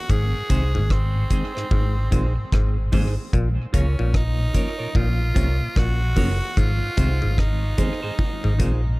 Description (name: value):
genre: roots reggae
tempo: 74 BPM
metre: 4/4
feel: swing 61% on 16ths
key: unclear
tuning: A4 = 440 Hz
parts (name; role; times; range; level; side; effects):
- raspy tenor saxophone; melody; 0.0-9.0 s; C4 to Ab4; -30 LUFS; right 1 dB; dub echo
- muted clav; riff; 0.1-8.8 s; Gb2 to Db3; -32 LUFS; left 4 dB; none
- vintage muted fingered electric bass; bass; 0.1-9.0 s; Gb1 to Db2; -21 LUFS; equal; none
- deep reggae drum kit; drums; 0.1-8.8 s; hi-hat, kick drum, rim click; -22 LUFS; equal; none
- mellow tonewheel organ; accompaniment; 0.4-8.9 s; Ab2 to Db4; -31 LUFS; left 1 dB; chorus vibrato, slow rotary speaker, tape echo
- semi-hollow electric guitar; accompaniment; 0.5-8.9 s; Eb4 to Db5; -34 LUFS; right 3 dB; dub echo
- bongos; percussion; 0.8-8.4 s; none; -34 LUFS; right 4 dB; none
room: little or no reverb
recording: echo-heavy mix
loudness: -19 LUFS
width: side -22 dB against mid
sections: 0.0-9.0 A section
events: none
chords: 0.1 Ab; 3.3 Bbm; 6.6 Ab